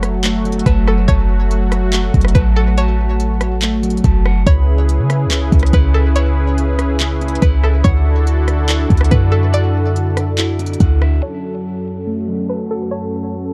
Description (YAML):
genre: hip hop, atmospheric cloud-rap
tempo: 142 BPM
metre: 4/4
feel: half-time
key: F# minor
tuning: A4 = 440 Hz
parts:
  - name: string-like resonator pluck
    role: melody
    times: 0.0-13.5 s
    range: A4 to D5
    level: -27 LUFS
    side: equal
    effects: chorus, low-pass filter, digital delay
  - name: warm analog pad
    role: sustained chords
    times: 0.0-13.5 s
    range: F#2 to B4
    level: -24 LUFS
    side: equal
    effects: chorus, sidechain pumping, low-pass filter
  - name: electric guitar at the edge of break-up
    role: arpeggios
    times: 0.0-13.5 s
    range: F#3 to B5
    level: -27 LUFS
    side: equal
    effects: low-pass filter, digital delay
  - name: clean 808-style bass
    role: bass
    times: 0.0-11.2 s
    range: F#1 to C#3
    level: -16 LUFS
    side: equal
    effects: none
  - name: smooth R&B drum kit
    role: drums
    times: 0.0-11.1 s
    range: handclaps, hi-hat, kick drum, rim click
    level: -19 LUFS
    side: equal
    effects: none
room: little or no reverb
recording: dark, warm production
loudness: -15 LUFS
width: mono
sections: 0.0-11.2 A section; 11.2-13.5 B section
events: filter sweep 11.2-13.5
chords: 0.0 F#m; 4.5 C#m7; 7.8 Dadd9; 11.2 F#m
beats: 0.24 0.66 | 1.08 1.51 1.93 2.35 | 2.77 3.20 3.62 4.04 | 4.47 4.89 5.31 5.73 | 6.16 6.58 7.00 7.42 | 7.85 8.27 8.69 9.11 | 9.54 9.96 10.38 10.80 | 11.23 11.65 12.07 12.49 | 12.92 13.34